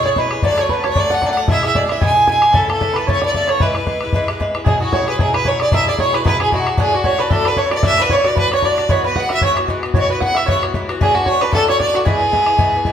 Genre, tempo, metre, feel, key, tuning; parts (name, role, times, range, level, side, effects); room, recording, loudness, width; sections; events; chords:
celtic folk, Celtic reel; 227 BPM; 4/4; swing 55% on 8ths; E mixolydian; A4 = 440 Hz
clear fiddle; melody; 0.0-12.9 s; F#4 to G#5; -16 LUFS; equal
bluegrass banjo; second line; 0.0-12.9 s; F#4 to G#5; -22 LUFS; right 5 dB
Irish bouzouki; accompaniment; 0.0-12.9 s; G#2 to B4; -21 LUFS; left 3 dB
bodhran; percussion; 0.2-12.9 s; -20 LUFS; left 1 dB
wet stone room reverb, RT60 1.2 s; band playing live in one room; -13 LUFS; side -9 dB against mid
0.0-4.7 A section; 4.7-12.9 B section
0.4 D; 1.5 E; 2.5 Aadd9; 3.6 E; 4.7 Eadd9; 6.8 Dadd9; 8.9 Eadd9; 11.0 Dadd9; 12.1 E